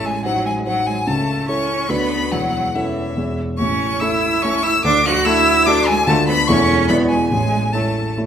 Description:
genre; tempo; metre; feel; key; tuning
quick classical-period movement for piano trio; 144 BPM; 3/4; straight; A major; A4 = 443 Hz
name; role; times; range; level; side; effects
rich violin; melody; 0.0-8.2 s; E5 to F#6; -19 LUFS; left 3 dB; none
rich cello; second line; 0.0-8.2 s; E3 to F#4; -21 LUFS; right 5 dB; none
dark grand piano; accompaniment; 0.0-8.3 s; E1 to D5; -19 LUFS; equal; none
room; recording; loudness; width
wet recital hall reverb, RT60 1.6 s; recorded in a church or concert hall; -15 LUFS; side -8 dB against mid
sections
0.0-8.3 A section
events
none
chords
0.0 Adim7; 1.1 A/C#; 1.9 Bm/D; 2.3 A/E; 3.2 E; 3.6 A; 4.8 D; 6.1 Dm; 6.5 A/E; 6.9 E7; 7.3 A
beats
0.26 0.67 | 1.08 1.49 1.90 | 2.32 2.75 3.17 | 3.59 4.01 4.43 | 4.84 5.26 5.67 | 6.08 6.49 6.89 | 7.32 7.74 8.17

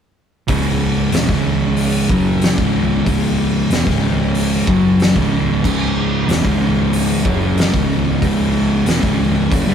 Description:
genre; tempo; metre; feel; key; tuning
stoner and doom metal; 93 BPM; 4/4; straight; C# minor; A4 = 440 Hz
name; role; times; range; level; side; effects
thick fuzz guitar; riff; 0.5-9.7 s; C#2 to G3; -18 LUFS; left 4 dB; distortion
thick fuzz guitar; riff; 0.5-9.7 s; C#2 to G3; -18 LUFS; right 4 dB; distortion
woody fretless electric bass; bass; 0.5-9.7 s; C#1 to G1; -24 LUFS; equal; tube saturation
oversized low-tuned drum kit; drums; 0.5-9.7 s; crash cymbal, hi-hat, kick drum, snare drum; -19 LUFS; equal; none
room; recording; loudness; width
light reverb; rough rehearsal-room recording, warm saturation; -14 LUFS; side -8 dB against mid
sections
0.5-9.7 A section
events
none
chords
0.5 C#m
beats
| 0.48 1.13 1.77 2.42 | 3.06 3.71 4.35 5.00 | 5.64 6.28 6.93 7.57 | 8.22 8.87 9.51

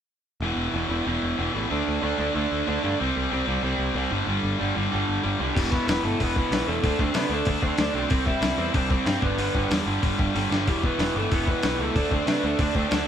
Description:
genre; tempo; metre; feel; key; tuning
punk rock; 188 BPM; 4/4; straight; unclear; A4 = 439 Hz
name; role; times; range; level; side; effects
crunchy overdriven guitar; riff; 0.4-13.1 s; E2 to D4; -27 LUFS; right 6 dB; none
distorted electric guitar; riff; 0.4-13.1 s; E2 to D4; -28 LUFS; left 8 dB; overdrive
modern bright picked electric bass; bass; 0.4-13.1 s; E1 to C3; -29 LUFS; equal; none
lead guitar through a small cranked amp; melody; 5.6-13.1 s; G3 to E5; -29 LUFS; left 1 dB; overdrive
dusty soul sampler-style drum kit; drums; 5.6-13.0 s; crash cymbal, hi-hat, kick drum, snare drum; -26 LUFS; left 1 dB; overdrive
room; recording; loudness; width
moderate stone room reverb, RT60 1.3 s; band playing live in one room; -22 LUFS; side -9 dB against mid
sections
0.4-5.6 A section; 5.6-13.1 B section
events
drum fill 10.3-10.7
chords
0.4 E5; 1.7 D5; 3.0 C5; 4.1 G5; 5.6 Em; 6.8 D5; 8.1 C; 9.2 G; 10.7 Em; 11.9 D5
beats
| 0.42 0.74 1.06 1.38 | 1.70 2.02 2.35 2.67 | 2.99 3.31 3.63 3.95 | 4.27 4.59 4.91 5.23 | 5.55 5.87 6.19 6.51 | 6.83 7.15 7.47 7.79 | 8.11 8.43 8.75 9.07 | 9.39 9.71 10.03 10.35 | 10.67 10.99 11.31 11.63 | 11.95 12.27 12.59 12.90

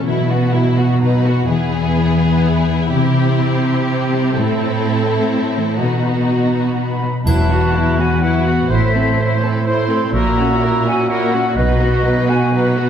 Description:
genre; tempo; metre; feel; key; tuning
cinematic, heroic adventure film score; 126 BPM; 3/4; straight; E major; A4 = 440 Hz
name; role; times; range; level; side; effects
warm symphonic violin section; melody; 0.0-12.9 s; E4 to C5; -23 LUFS; left 2 dB; none
warm symphonic violin section; second line; 0.0-12.9 s; C4 to F#4; -25 LUFS; left 3 dB; none
rich symphonic viola section; accompaniment; 0.0-12.9 s; F#3 to C#4; -24 LUFS; equal; none
concert harp; arpeggios; 0.0-12.9 s; A2 to F#5; -20 LUFS; left 6 dB; none
rich symphonic cello section; bass; 0.0-12.9 s; E2 to C3; -18 LUFS; right 3 dB; none
bright small flute group; second line; 6.8-12.5 s; D#5 to C6; -22 LUFS; equal; none
warm clarinet; second line; 7.3-12.9 s; E4 to F#4; -24 LUFS; equal; none
warm oboe; second line; 7.3-12.9 s; B4 to F#5; -25 LUFS; right 2 dB; none
rich studio double bass section; bass; 7.3-12.0 s; E1 to B1; -21 LUFS; right 3 dB; none
timpani; percussion; 7.3-8.0 s; E2; -21 LUFS; equal; none
triangle; percussion; 7.3-8.2 s; none; -34 LUFS; equal; none
room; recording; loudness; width
wet scoring stage reverb, RT60 1.8 s; none; -13 LUFS; side -8 dB against mid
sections
0.0-7.3 A section; 7.3-12.9 B section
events
build-up 0.0-7.3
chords
0.1 Bsus4; 1.0 B; 1.5 E; 2.9 C; 4.4 Am; 5.8 B; 7.3 Esus2; 8.7 Am; 10.1 F#7/A#; 11.6 B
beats
| 0.07 0.55 1.02 | 1.50 1.98 2.46 | 2.93 3.41 3.89 | 4.37 4.85 5.33 | 5.81 6.30 6.79 | 7.27 7.75 8.23 | 8.71 9.19 9.67 | 10.14 10.62 11.10 | 11.57 12.05 12.53

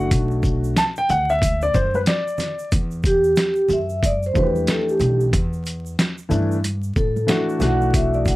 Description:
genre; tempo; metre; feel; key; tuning
hip hop, jazz-hop; 92 BPM; 4/4; swing 62% on 16ths; E minor; A4 = 441 Hz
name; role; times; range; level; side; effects
dark grand piano; accompaniment; 0.0-8.4 s; E3 to A5; -22 LUFS; left 1 dB; none
upright bass; bass; 0.0-8.4 s; B1 to A2; -23 LUFS; equal; none
boom bap sampler-style drum kit; drums; 0.1-8.4 s; hi-hat, kick drum, shaker, snare drum; -21 LUFS; equal; overdrive
egg shaker and congas; percussion; 0.1-8.4 s; none; -34 LUFS; right 3 dB; none
vibraphone with soft mallets; melody; 3.1-8.4 s; G4 to F#5; -20 LUFS; right 1 dB; none
room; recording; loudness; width
light reverb; vinyl crackle; -18 LUFS; side -18 dB against mid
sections
0.0-2.7 A section; 2.7-8.4 A section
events
grand piano solo 0.0-2.7; vibraphone solo 2.7-8.4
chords
0.0 Bm7; 2.7 Em11; 7.6 Bm7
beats
| 0.11 0.77 1.42 2.07 | 2.72 3.37 4.03 4.68 | 5.33 5.98 6.63 7.29 | 7.94

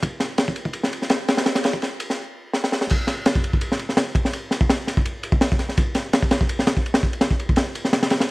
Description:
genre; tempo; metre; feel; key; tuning
drum and bass; 167 BPM; 4/4; swing 54% on 16ths; none; none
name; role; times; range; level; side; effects
crunchy breakbeat drum kit; drums; 0.0-8.3 s; crash cymbal, kick drum, ride cymbal, snare drum; -19 LUFS; equal; none
room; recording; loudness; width
little or no reverb; vinyl crackle, high-pass filter; -19 LUFS; side -22 dB against mid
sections
0.0-2.9 A section; 2.9-8.3 B section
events
build-up 0.0-2.9; stop 2.2-2.9; drum fill 2.5-2.9; drop 2.9-8.3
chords
none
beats
| 0.03 0.39 0.74 1.10 | 1.46 1.82 2.18 2.54 | 2.90 3.26 3.62 3.98 | 4.34 4.70 5.05 5.42 | 5.77 6.13 6.49 6.85 | 7.21 7.57 7.93 8.29

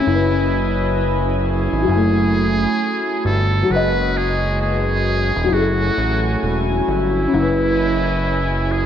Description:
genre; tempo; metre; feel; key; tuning
lo-fi hip hop; 66 BPM; 4/4; swing 65% on 16ths; F# dorian; A4 = 439 Hz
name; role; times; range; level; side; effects
trumpet with metal mute; melody; 0.0-8.9 s; E4 to B4; -23 LUFS; right 1 dB; low-pass filter, ping-pong delay
dark upright piano; accompaniment; 0.0-8.9 s; F#3 to G#5; -20 LUFS; left 3 dB; low-pass filter
warm studio string section; sustained chords; 0.0-8.9 s; F#3 to G#5; -23 LUFS; right 2 dB; low-pass filter
fat analog bass; bass; 0.1-8.9 s; E1 to A1; -20 LUFS; equal; none
room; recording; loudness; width
moderate lush hall reverb, RT60 1.9 s, studio reverb; dreamy mix soaked in reverb, cassette tape; -16 LUFS; side -9 dB against mid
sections
0.0-8.9 A section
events
none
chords
0.1 C#m9/F#; 1.9 F#m9; 3.7 G#m7/F#; 5.5 F#m9; 7.3 C#m9/F#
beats
| 0.06 0.97 1.88 2.79 | 3.70 4.61 5.51 6.42 | 7.33 8.24

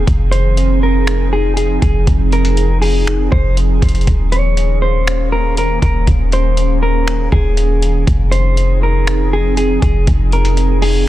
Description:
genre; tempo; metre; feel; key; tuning
hip hop, atmospheric cloud-rap; 120 BPM; 4/4; half-time; F minor; A4 = 441 Hz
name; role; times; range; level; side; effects
mellow electric guitar; melody; 0.0-11.1 s; Ab4 to Db5; -20 LUFS; left 2 dB; low-pass filter, tape echo
glassy FM pad; sustained chords; 0.0-11.1 s; Eb3 to Ab4; -20 LUFS; right 2 dB; ensemble chorus, built-in reverb, sidechain pumping
clean 808-style bass; bass; 0.0-11.1 s; Eb1 to F1; -14 LUFS; equal; none
trip hop sampler-style drum kit; drums; 0.1-10.9 s; finger snaps, hi-hat, kick drum; -18 LUFS; equal; soft clipping on snare
room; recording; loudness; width
digital ambience; dense, heavily limited modern master; -12 LUFS; side -14 dB against mid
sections
0.0-11.1 A section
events
none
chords
0.1 Fm7; 4.1 Eb7sus4; 8.1 Fm7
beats
| 0.07 0.57 1.07 1.57 | 2.07 2.57 3.07 3.57 | 4.07 4.57 5.07 5.57 | 6.07 6.57 7.07 7.57 | 8.07 8.57 9.07 9.57 | 10.07 10.57 11.07

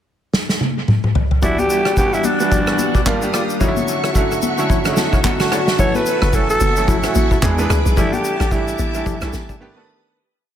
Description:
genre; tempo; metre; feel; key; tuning
amapiano; 110 BPM; 4/4; swing 58% on 16ths; E dorian; A4 = 439 Hz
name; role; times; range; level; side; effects
unplugged drum kit; drums; 0.3-9.6 s; handclaps, kick drum, rim click, shaker, snare drum, toms; -19 LUFS; equal; dub echo
growling alto saxophone; melody; 1.4-9.6 s; D4 to C#5; -21 LUFS; equal; dub echo
clear grand piano; accompaniment; 1.4-10.2 s; D3 to A5; -22 LUFS; right 3 dB; none
string machine, violins; sustained chords; 1.4-10.1 s; G3 to E6; -24 LUFS; equal; ensemble chorus, sidechain pumping
percussive organ stab; stabs; 1.4-9.6 s; D4 to D5; -26 LUFS; left 7 dB; chorus, dub echo
congas; percussion; 1.4-9.5 s; none; -27 LUFS; left 8 dB; dub echo
hollow log drum bass; bass; 6.2-9.5 s; F#1 to E2; -19 LUFS; equal; none
room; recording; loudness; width
light reverb, small room reverb; echo-heavy mix; -15 LUFS; side -10 dB against mid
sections
0.0-1.4 pickup bar; 1.4-10.2 groove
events
drum fill 0.3-1.4; grand piano fill 4.7-5.8; fade-out 8.0-10.2; break 9.6-10.2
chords
0.0 N.C.; 1.4 Em9; 3.1 D#maj9; 3.6 Dmaj9; 5.8 F#m7; 7.4 E7; 8.0 A7sus4; 9.6 B7alt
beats
0.33 0.88 | 1.43 1.97 2.52 3.06 | 3.61 4.15 4.70 5.24 | 5.79 6.33 6.88 7.42 | 7.97 8.52 9.06 9.61

